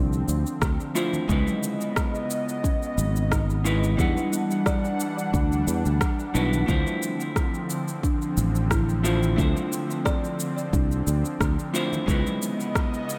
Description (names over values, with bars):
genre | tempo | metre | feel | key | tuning
sunset chillout | 89 BPM | 4/4 | swing 53% on 16ths | D dorian | A4 = 440 Hz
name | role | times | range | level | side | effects
vintage hollow-body jazz guitar | accompaniment | 0.0-13.2 s | F3 to F#5 | -32 LUFS | equal | dub echo
airy breathy pad | sustained chords | 0.0-13.2 s | C#3 to F#5 | -33 LUFS | equal | chorus
kalimba | arpeggios | 0.0-12.4 s | B3 to D5 | -35 LUFS | equal | low-pass filter, dub echo
sustaining fretless electric bass | bass | 0.0-12.2 s | G#1 to E2 | -27 LUFS | equal | none
electronic shaker and rim click | drums | 0.1-13.2 s | none | -34 LUFS | equal | studio reverb
electronic kick drum | drums | 0.6-12.9 s | none | -28 LUFS | equal | studio reverb
congas | percussion | 1.1-12.4 s | none | -40 LUFS | equal | none
room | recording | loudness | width
moderate echo chamber reverb, RT60 1.9 s | echo-heavy mix | -25 LUFS | mono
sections
0.0-13.2 A section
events
filter sweep on kalimba 0.0-13.2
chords
0.0 Dm9; 1.3 C#m9; 4.0 Em9; 6.7 Dm9; 12.1 C#m9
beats
0.62 | 1.29 1.97 2.64 3.32 | 3.99 4.66 5.34 6.01 | 6.69 7.36 8.04 8.71 | 9.38 10.06 10.73 11.41 | 12.08 12.75